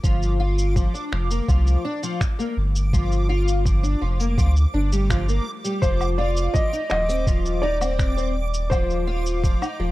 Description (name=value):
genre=folktronica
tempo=83 BPM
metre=4/4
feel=straight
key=G minor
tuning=A4 = 440 Hz
part: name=fingerpicked twelve-string acoustic guitar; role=arpeggios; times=0.0-9.9 s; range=F3 to F4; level=-27 LUFS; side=left 1 dB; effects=analog chorus
part: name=warm sub bass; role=bass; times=0.0-9.9 s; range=Eb1 to D2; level=-22 LUFS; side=equal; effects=none
part: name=electronic kick drum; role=drums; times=0.0-9.6 s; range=none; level=-21 LUFS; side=equal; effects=none
part: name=electronic shaker, finger snaps and woodblock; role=drums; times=0.0-9.8 s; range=none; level=-32 LUFS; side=left 1 dB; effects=none
part: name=backwards swelling texture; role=texture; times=0.0-9.9 s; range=D6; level=-36 LUFS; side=right 4 dB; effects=built-in reverb
part: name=felt-muted upright piano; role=melody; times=5.8-9.9 s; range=C5 to Eb5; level=-26 LUFS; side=equal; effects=tape echo
room=little or no reverb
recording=dark, warm production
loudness=-19 LUFS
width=side -17 dB against mid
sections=0.0-9.9 A section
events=none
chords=0.0 Gm7; 5.8 F7(no3)